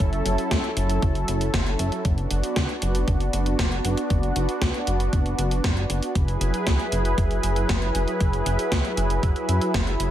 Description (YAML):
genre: synthwave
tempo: 117 BPM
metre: 4/4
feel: straight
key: unclear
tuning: A4 = 438 Hz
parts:
  - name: lush unison pad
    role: sustained chords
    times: 0.0-10.1 s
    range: F#3 to B4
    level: -26 LUFS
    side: equal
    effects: chorus, sidechain pumping
  - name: chorused synth bass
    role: bass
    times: 0.0-10.1 s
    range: F#1 to F#2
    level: -24 LUFS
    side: equal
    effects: none
  - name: electronic kick drum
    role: drums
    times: 0.0-9.8 s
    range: none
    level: -24 LUFS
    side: equal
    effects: small room ambience
  - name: gated 80s digital drum machine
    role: drums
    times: 0.0-10.1 s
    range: hi-hat, snare drum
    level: -29 LUFS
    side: equal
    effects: gated reverb, gated reverb snare, small room ambience
room: little or no reverb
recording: none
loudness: -21 LUFS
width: side -11 dB against mid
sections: 0.0-10.1 A section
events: none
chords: 0.0 F#m7; 2.1 Bm/F#; 6.2 Eadd9/F#